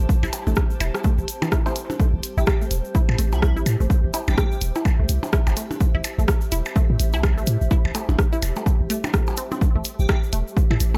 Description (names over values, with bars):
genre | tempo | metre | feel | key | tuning
minimal techno | 126 BPM | 4/4 | swing 59% on 16ths | A minor | A4 = 440 Hz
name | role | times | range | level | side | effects
punchy sub bass | bass | 0.0-11.0 s | E1 to A2 | -24 LUFS | equal | sidechain pumping
tube shaker | percussion | 0.0-11.0 s | none | -39 LUFS | equal | none
granular cloud pad | texture | 0.0-11.0 s | G4 to A5 | -37 LUFS | equal | built-in reverb, sidechain pumping
electronic kick drum | drums | 0.1-10.7 s | none | -22 LUFS | equal | none
resonant blip pluck | riff | 0.2-11.0 s | E3 to E4 | -33 LUFS | equal | chorus, phaser, sidechain pumping, dub echo
percussion blips | percussion | 0.2-11.0 s | none | -33 LUFS | equal | none
minimal click drum kit | drums | 0.3-10.9 s | hi-hat, rim click | -29 LUFS | equal | none
filtered dub chord stab | stabs | 1.7 s | A3 to C5 | -36 LUFS | equal | chorus, dub echo
airy dreamy lead | melody | 2.4-4.6, 10.0-11.0 s | E4 to A4 | -37 LUFS | equal | chorus, dub echo
room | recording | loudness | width
digital ambience | none | -21 LUFS | mono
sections
0.0-11.0 A section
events
none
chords
0.0 Am